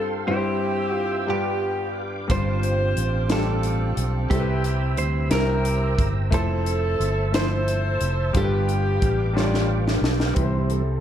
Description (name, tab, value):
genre	slow gospel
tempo	60 BPM (dotted quarters)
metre	6/8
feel	straight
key	C major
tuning	A4 = 440 Hz
part	clean electric guitar	melody	0.0-9.7 s	G4 to C5	-29 LUFS	right 3 dB	phaser
part	warm saxophone section	melody	0.0-9.7 s	B3 to C5	-30 LUFS	left 2 dB	none
part	bright concert grand piano	accompaniment	0.0-11.0 s	G2 to D5	-28 LUFS	left 3 dB	none
part	tonewheel organ	sustained chords	0.0-11.0 s	E3 to E6	-32 LUFS	right 4 dB	chorus vibrato, slow rotary speaker
part	fingered electric bass	bass	2.3-11.0 s	F1 to D2	-23 LUFS	equal	none
part	crisp fusion drum kit	drums	2.3-10.9 s	hi-hat, kick drum, snare drum	-26 LUFS	equal	none
room	light reverb, studio reverb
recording	dark, warm production, faint mains hum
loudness	-20 LUFS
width	side -10 dB against mid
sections	0.0-10.4 A section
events	drum fill 9.4-10.4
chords	0.3 C/G; 1.3 G7; 2.3 G7sus4; 4.3 Cmaj7; 5.3 C7; 6.3 Fmaj7; 8.3 G7; 10.4 C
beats	| 0.28 1.29 | 2.30 3.31 | 4.31 5.32 | 6.33 7.34 | 8.35 9.36 | 10.37